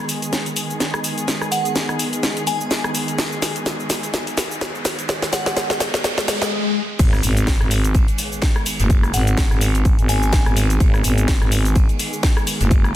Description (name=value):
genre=bass house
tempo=126 BPM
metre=4/4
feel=swing 57% on 16ths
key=G# minor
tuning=A4 = 440 Hz
part: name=dark studio string section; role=sustained chords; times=0.0-13.0 s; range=D#3 to G#4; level=-27 LUFS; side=equal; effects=sidechain pumping, low-pass filter
part: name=riser, swell and impact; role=sound effects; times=1.5-8.9 s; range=none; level=-28 LUFS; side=left 2 dB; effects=none
part: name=house drum kit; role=drums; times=0.1-12.9 s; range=cabasa, crash cymbal, hi-hat, rim click, snare drum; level=-22 LUFS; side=equal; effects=none
part: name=glassy synth bell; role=melody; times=1.5-5.5, 9.1-10.6 s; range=F#5 to G#5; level=-27 LUFS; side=equal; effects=chorus, phaser, tape echo
part: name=growling FM bass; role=bass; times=7.0-12.9 s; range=F#1 to G#1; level=-18 LUFS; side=equal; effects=sidechain pumping
part: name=electronic kick drum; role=drums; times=7.0-12.8 s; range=none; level=-16 LUFS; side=equal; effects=none
part: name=soft brush drum kit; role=drums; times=7.0-12.8 s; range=ride cymbal, snare drum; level=-32 LUFS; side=right 4 dB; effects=sidechain pumping on cymbals, high-pass filter on cymbals, soft clipping on snare, high-pass filter on snare, high-pass filter on room
room=light reverb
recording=dense, heavily limited modern master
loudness=-17 LUFS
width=side -13 dB against mid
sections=0.0-7.0 A section; 7.0-13.0 B section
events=build-up 0.0-7.0; drum fill 0.0-6.5; riser 1.5-6.5; swell 6.0-7.0; drop 7.0-13.0; impact 7.0-8.9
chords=0.0 G#m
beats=0.33 0.80 | 1.28 1.76 2.23 2.71 | 3.19 3.66 4.14 4.61 | 5.09 5.57 6.04 6.52 | 6.99 7.47 7.95 8.42 | 8.90 9.38 9.85 10.33 | 10.80 11.28 11.76 12.23 | 12.71